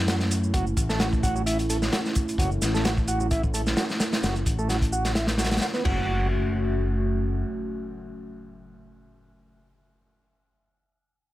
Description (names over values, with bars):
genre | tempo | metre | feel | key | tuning
breakbeat, breaks | 130 BPM | 4/4 | swing 54% on 16ths | F# minor | A4 = 441 Hz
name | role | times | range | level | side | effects
dark analog pad | sustained chords | 0.0-9.6 s | A3 to F#4 | -30 LUFS | equal | chorus, sidechain pumping
fingered electric bass | bass | 0.0-7.4 s | F#1 to F#2 | -27 LUFS | equal | low-pass filter
combo organ | riff | 0.1-6.3 s | F#3 to F#4 | -30 LUFS | right 1 dB | overdrive, low-pass filter, ping-pong delay
crunchy breakbeat drum kit | drums | 0.1-6.0 s | crash cymbal, hi-hat, kick drum, snare drum | -27 LUFS | equal | none
shaker | drums | 0.1-5.8 s | none | -37 LUFS | right 3 dB | none
impact | sound effects | 5.8-9.6 s | none | -36 LUFS | equal | none
room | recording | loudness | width
light reverb | none | -22 LUFS | side -15 dB against mid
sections
0.0-6.1 A section; 6.1-9.8 B section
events
filter sweep on transistor combo organ 0.0-6.1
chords
0.0 F#m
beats
0.08 | 0.54 1.00 1.46 1.92 | 2.39 2.85 3.31 3.77 | 4.23 4.69 5.16 5.62 | 6.08 6.54 7.00 7.46 | 7.92 8.39 8.85 9.31